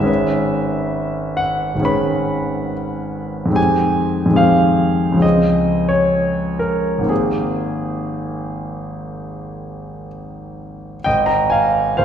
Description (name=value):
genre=classical, impressionist solo piano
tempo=58-75 BPM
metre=4/4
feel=rubato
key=Ab major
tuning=A4 = 437 Hz
part: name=clear concert grand piano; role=solo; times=0.0-12.0 s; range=Ab1 to Cb6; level=-16 LUFS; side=equal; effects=none
room=wet scoring stage reverb, RT60 1.6 s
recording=heard from further back in the room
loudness=-15 LUFS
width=side -8 dB against mid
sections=0.0-11.1 A section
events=none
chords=0.1 Dbm9/Ab; 3.6 Fm9; 5.2 Dbmaj7; 7.1 Abmaj9; 11.1 Abmaj7sus2